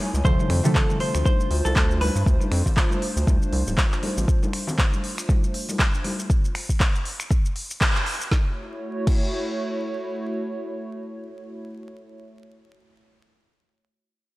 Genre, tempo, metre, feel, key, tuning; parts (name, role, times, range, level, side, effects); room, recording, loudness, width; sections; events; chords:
deep house; 119 BPM; 4/4; swing 57% on 16ths; A4 = 440 Hz
hollow soft pad; sustained chords; 0.0-12.2 s; A3 to G#5; -31 LUFS; right 1 dB; chorus, sidechain pumping
deep mellow chord stab; stabs; 0.0-2.2 s; C3 to C#4; -24 LUFS; right 1 dB; chorus, phaser, sidechain pumping
congas; percussion; 0.0-6.2 s; -32 LUFS; left 2 dB
round analog bass; bass; 0.1-4.3 s; D1 to G2; -23 LUFS; equal; sidechain pumping
deep house drum kit; drums; 0.1-9.2 s; crash cymbal, finger snaps, handclaps, hi-hat, shaker, snare drum; -28 LUFS; equal; small room ambience
vintage hollow-body jazz guitar; melody; 0.2-2.2 s; A4 to C5; -29 LUFS; left 1 dB; analog delay
electronic kick drum; drums; 0.2-9.2 s; -21 LUFS; equal; small room ambience
light reverb, digital ambience; dry, gritty hardware recording, vinyl crackle; -20 LUFS; side -19 dB against mid
0.0-8.3 A section; 8.3-12.3 B section
drop 0.0-8.3; band accent 7.8
0.2 Dm7; 8.3 F#m7